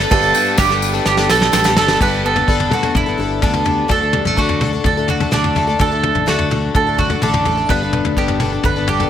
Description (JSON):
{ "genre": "indie folk with a building arrangement", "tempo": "127 BPM", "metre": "4/4", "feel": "straight", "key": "D major", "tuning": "A4 = 440 Hz", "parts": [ { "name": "dark upright piano", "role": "accompaniment", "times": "0.0-2.0 s", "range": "G1 to D5", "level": "-26 LUFS", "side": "right 2 dB", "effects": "none" }, { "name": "picked plugged-in twelve-string acoustic guitar", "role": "accompaniment", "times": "0.0-9.1 s", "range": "D3 to A4", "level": "-21 LUFS", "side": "left 7 dB", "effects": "none" }, { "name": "mandolin", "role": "arpeggios", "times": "0.0-9.1 s", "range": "D4 to B4", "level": "-18 LUFS", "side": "right 6 dB", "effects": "none" }, { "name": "fingered electric bass", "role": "bass", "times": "0.0-9.0 s", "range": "G1 to D2", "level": "-22 LUFS", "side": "equal", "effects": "none" }, { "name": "soft brush drum kit", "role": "drums", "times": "0.0-9.1 s", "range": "crash cymbal, kick drum, ride cymbal, snare drum, toms", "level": "-19 LUFS", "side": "equal", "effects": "none" }, { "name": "tambourine", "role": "percussion", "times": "0.1-1.9 s", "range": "none", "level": "-29 LUFS", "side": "left 10 dB", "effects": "none" }, { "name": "fingerpicked steel-string acoustic guitar", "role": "accompaniment", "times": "2.0-9.1 s", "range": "D2 to A4", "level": "-23 LUFS", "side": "left 5 dB", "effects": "none" } ], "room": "light reverb, small room ambience", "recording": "none", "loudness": "-13 LUFS", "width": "side -10 dB against mid", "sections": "0.0-2.0 A section; 2.0-3.9 B section; 3.9-9.1 C section", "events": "drum fill 1.1-2.0", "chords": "0.0 Gadd9; 3.9 D; 7.7 Gadd9" }